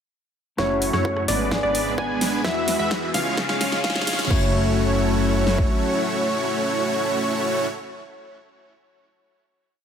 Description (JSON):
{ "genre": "EDM, festival progressive house", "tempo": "129 BPM", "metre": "4/4", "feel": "straight", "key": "F# minor", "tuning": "A4 = 440 Hz", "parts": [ { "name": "mellow electric guitar", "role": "accompaniment", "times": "0.6-7.7 s", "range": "G#2 to G#4", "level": "-28 LUFS", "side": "left 4 dB", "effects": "wide subtle chorus, sidechain pumping, tape echo" }, { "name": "lush unison pad", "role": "sustained chords", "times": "0.6-7.7 s", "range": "C#3 to A4", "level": "-30 LUFS", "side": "right 1 dB", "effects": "chorus, sidechain pumping" }, { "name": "plucky unison lead", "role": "arpeggios", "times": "0.6-7.7 s", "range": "C#5 to G#5", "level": "-26 LUFS", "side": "equal", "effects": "sidechain pumping, tape echo" }, { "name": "dense compressed supersaw", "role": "riff", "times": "0.6-7.7 s", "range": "G#3 to G#5", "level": "-26 LUFS", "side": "right 1 dB", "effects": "sidechain pumping, low-pass filter, tape echo" }, { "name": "fat analog bass", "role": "bass", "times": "0.6-5.7 s", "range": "F#1 to F#2", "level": "-27 LUFS", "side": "equal", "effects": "sidechain pumping" }, { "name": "big-room dance drum kit", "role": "drums", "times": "0.6-5.7 s", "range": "kick drum, snare drum", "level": "-25 LUFS", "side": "equal", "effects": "high-pass filter on kick, high-pass filter on snare, high-pass filter on room" }, { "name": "big-room dance drum kit", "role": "drums", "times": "0.6-4.4 s", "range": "crash cymbal, hi-hat, rim click, snare drum", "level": "-27 LUFS", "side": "equal", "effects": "none" }, { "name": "riser", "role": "sound effects", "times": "2.6-4.3 s", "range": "none", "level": "-33 LUFS", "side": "left 4 dB", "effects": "none" } ], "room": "light reverb", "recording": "high-pass filter", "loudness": "-20 LUFS", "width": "side -8 dB against mid", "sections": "0.6-4.3 build; 4.3-8.0 final chord", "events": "build-up 0.6-4.3; drum fill 0.6-4.3; filter sweep on supersaw synth 0.6-4.3; filter sweep on analog synth pad 0.6-4.3; filter sweep 0.6-4.3; riser 2.6-4.3", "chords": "0.6 F#m7; 1.5 G#dim; 2.4 Eadd9; 3.4 C#; 4.3 F#m7" }